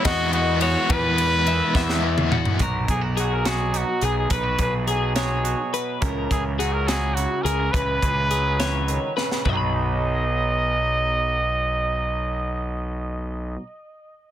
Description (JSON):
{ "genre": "math rock and midwest emo", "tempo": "70 BPM (dotted quarters)", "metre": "6/8", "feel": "straight", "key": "B major", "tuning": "A4 = 439 Hz", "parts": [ { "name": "twelve-string electric guitar", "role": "arpeggios", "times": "0.0-13.7 s", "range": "F#4 to B5", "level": "-28 LUFS", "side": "left 8 dB", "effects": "none" }, { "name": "cranked stack guitar", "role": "riff", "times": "0.0-2.6 s", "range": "E3 to E4", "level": "-26 LUFS", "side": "left 1 dB", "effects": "overdrive, tremolo" }, { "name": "crisp fusion drum kit", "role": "drums", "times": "0.0-9.6 s", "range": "hi-hat, kick drum, ride cymbal, snare drum, toms", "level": "-26 LUFS", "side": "equal", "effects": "none" }, { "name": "clear trumpet", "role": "melody", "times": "0.1-13.6 s", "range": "F#4 to D#5", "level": "-25 LUFS", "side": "right 1 dB", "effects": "tape echo" }, { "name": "fuzz picked electric bass", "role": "bass", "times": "0.1-13.6 s", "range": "B1 to E2", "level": "-25 LUFS", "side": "equal", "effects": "overdrive" }, { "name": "twangy electric guitar", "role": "accompaniment", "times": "2.6-13.7 s", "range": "B2 to G#4", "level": "-30 LUFS", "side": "right 10 dB", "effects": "none" } ], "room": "light reverb", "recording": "dense, heavily limited modern master", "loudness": "-20 LUFS", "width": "side -11 dB against mid", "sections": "0.0-2.6 A section; 2.6-9.5 B section; 9.5-12.9 C section", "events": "drum fill 1.8-2.6, 9.2", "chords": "0.0 Eadd9; 2.6 B6; 6.0 F#9sus4/C#; 9.5 B6" }